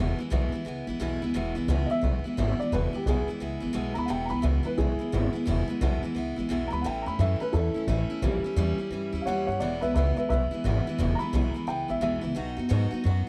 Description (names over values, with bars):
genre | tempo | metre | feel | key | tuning
rockabilly | 174 BPM | 4/4 | swing 63% on 8ths | E major | A4 = 440 Hz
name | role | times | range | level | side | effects
picked steel-string acoustic guitar | accompaniment | 0.0-13.3 s | E2 to F#4 | -32 LUFS | equal | none
upright bass | bass | 0.0-13.2 s | E1 to G#2 | -30 LUFS | equal | none
dark upright piano | melody | 1.9-12.4 s | E4 to B5 | -34 LUFS | equal | analog delay
room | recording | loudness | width
light reverb, small room ambience | vinyl crackle | -28 LUFS | mono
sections
0.0-1.3 A section; 1.3-13.3 B section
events
upright piano solo 1.3-13.3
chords
0.0 E; 6.8 A; 8.2 A#dim7; 9.6 E; 12.4 B